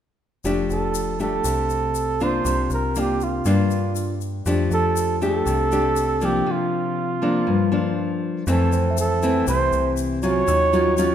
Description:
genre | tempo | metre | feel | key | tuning
bossa nova | 120 BPM | 4/4 | straight | F major | A4 = 441 Hz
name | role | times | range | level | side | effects
nylon-string guitar | accompaniment | 0.4-11.1 s | F2 to G4 | -22 LUFS | left 2 dB | none
metallic FM bass | bass | 0.4-11.1 s | F1 to G2 | -25 LUFS | equal | none
egg shaker | percussion | 0.4-11.1 s | none | -35 LUFS | left 8 dB | none
warm flugelhorn | melody | 0.7-11.1 s | F4 to Db5 | -23 LUFS | right 3 dB | none
mellow tine electric piano | accompaniment | 8.7-11.1 s | F4 to E5 | -28 LUFS | right 3 dB | none
room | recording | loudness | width
moderate recital hall reverb, RT60 1.5 s | minimal, uncompressed stereo recording | -19 LUFS | side -9 dB against mid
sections
0.4-8.5 A section; 8.5-11.1 B section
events
none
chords
0.4 F69; 2.5 C9sus4; 4.5 F69; 6.5 C9sus4; 8.5 Fmaj7; 10.5 Ebm9

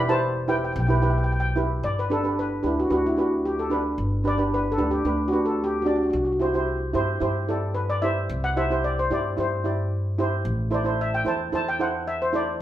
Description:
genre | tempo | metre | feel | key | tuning
calypso | 111 BPM | 4/4 | straight | G major | A4 = 440 Hz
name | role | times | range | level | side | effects
steel pan | melody | 0.0-12.6 s | E4 to A5 | -26 LUFS | left 2 dB | none
steel pan | accompaniment | 0.0-12.6 s | D4 to D5 | -26 LUFS | right 3 dB | none
upright bass | bass | 0.0-12.6 s | E1 to G2 | -27 LUFS | equal | none
room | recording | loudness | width
wet large studio reverb, RT60 0.9 s | band playing live in one room | -22 LUFS | side -12 dB against mid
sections
0.0-1.8 A section; 1.8-12.6 B section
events
steel pan solo 1.8-12.6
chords
0.0 Em; 1.8 G; 6.1 C; 10.5 Am

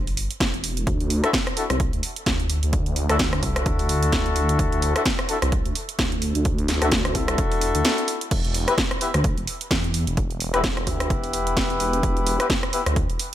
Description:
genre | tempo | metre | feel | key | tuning
bass house | 129 BPM | 4/4 | swing 57% on 16ths | unclear | A4 = 441 Hz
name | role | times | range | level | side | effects
phased detuned saw bass | bass | 0.0-13.2 s | E1 to E2 | -24 LUFS | equal | phaser, tube saturation, sidechain pumping
house drum kit | drums | 0.1-13.3 s | crash cymbal, hi-hat, rim click, snare drum | -25 LUFS | right 1 dB | none
electronic kick drum | drums | 0.4-13.1 s | none | -26 LUFS | equal | none
mellow horn section | stabs | 1.2-12.8 s | B3 to B4 | -26 LUFS | left 3 dB | sidechain pumping, dub echo
room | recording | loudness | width
little or no reverb | none | -20 LUFS | side -12 dB against mid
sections
0.0-13.3 A section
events
none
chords
0.0 Em; 0.9 Dadd9; 8.3 Em

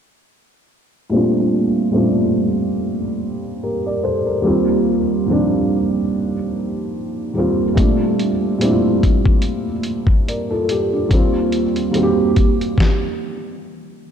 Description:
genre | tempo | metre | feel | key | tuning
lo-fi hip hop | 72 BPM | 4/4 | swing 56% on 16ths | Bb major | A4 = 440 Hz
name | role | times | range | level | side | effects
felt-muted upright piano | accompaniment | 1.1-13.0 s | Eb2 to D5 | -17 LUFS | right 1 dB | cassette tape, low-pass filter
dusty soul sampler-style drum kit | drums | 7.8-13.0 s | hi-hat, kick drum, snare drum | -16 LUFS | left 1 dB | overdrive
room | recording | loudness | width
wet plate reverb, RT60 2.4 s | dreamy mix soaked in reverb, cassette tape | -15 LUFS | side -8 dB against mid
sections
1.1-14.1 A section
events
filter sweep on felt piano 1.1-14.1; stop 12.8-14.1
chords
1.1 Bbmaj13; 4.4 Eb6; 7.8 Bbmaj13; 11.1 Eb6

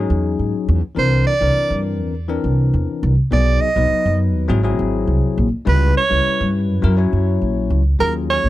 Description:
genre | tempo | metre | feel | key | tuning
jazz | 103 BPM | 4/4 | straight | unclear | A4 = 440 Hz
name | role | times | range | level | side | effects
bell-like tine electric piano | accompaniment | 0.0-8.5 s | E3 to C#5 | -22 LUFS | left 5 dB | wide subtle chorus
upright bass | bass | 0.0-8.5 s | G#1 to G#2 | -17 LUFS | equal | none
clear soprano saxophone | melody | 1.0-8.5 s | Bb4 to D#5 | -18 LUFS | right 3 dB | none
room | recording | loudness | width
little or no reverb | dry, close 1970s-style studio recording | -15 LUFS | side -15 dB against mid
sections
0.0-8.0 A section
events
soprano saxophone solo 0.0-8.0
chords
0.0 Emaj13; 1.0 C9; 3.3 B6; 4.5 G#7b13; 5.7 C#m7b5; 6.8 F#7; 8.0 Ebm11

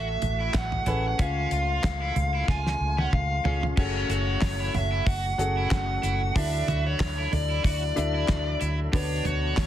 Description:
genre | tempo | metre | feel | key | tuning
piano-driven pop | 93 BPM | 4/4 | swing 56% on 16ths | F# minor | A4 = 444 Hz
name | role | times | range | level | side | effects
dark smooth lead guitar | melody | 0.0-9.7 s | C#5 to G#5 | -30 LUFS | equal | overdrive
warm baby grand piano | accompaniment | 0.0-9.7 s | A2 to F#5 | -34 LUFS | left 3 dB | none
tonewheel organ | sustained chords | 0.0-9.7 s | A2 to F#4 | -38 LUFS | equal | overdrive, chorus vibrato, stopped rotary speaker
crunchy overdriven guitar | riff | 0.0-9.6 s | C#4 to F#4 | -35 LUFS | right 4 dB | tremolo
vintage muted fingered electric bass | bass | 0.0-9.7 s | F#1 to D2 | -28 LUFS | equal | none
damped 70s drum kit | drums | 0.2-9.7 s | crash cymbal, handclaps, hi-hat, kick drum, snare drum, toms | -28 LUFS | equal | none
room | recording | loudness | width
light reverb, studio reverb | dense, heavily limited modern master | -23 LUFS | side -11 dB against mid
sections
0.0-3.8 A section; 3.8-9.7 B section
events
drum fill 2.5-3.8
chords
0.0 F#madd9/A; 1.2 C#; 3.8 F#madd9; 6.4 Dadd9; 8.9 Bm7/D

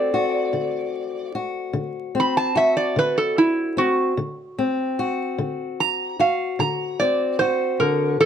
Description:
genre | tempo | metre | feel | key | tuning
acoustic country blues, solo or duo | 50 BPM (dotted quarters) | 12/8 | straight | unclear | A4 = 439 Hz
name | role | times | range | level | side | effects
metal-body resonator slide guitar | melody | 0.0-8.3 s | E4 to B5 | -20 LUFS | right 3 dB | none
fingerpicked old ladder-braced acoustic guitar | accompaniment | 0.0-8.3 s | D3 to F#4 | -24 LUFS | left 4 dB | none
room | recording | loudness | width
light reverb | close, detailed microphones, vinyl crackle | -20 LUFS | side -8 dB against mid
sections
0.0-8.3 A section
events
none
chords
0.0 D7

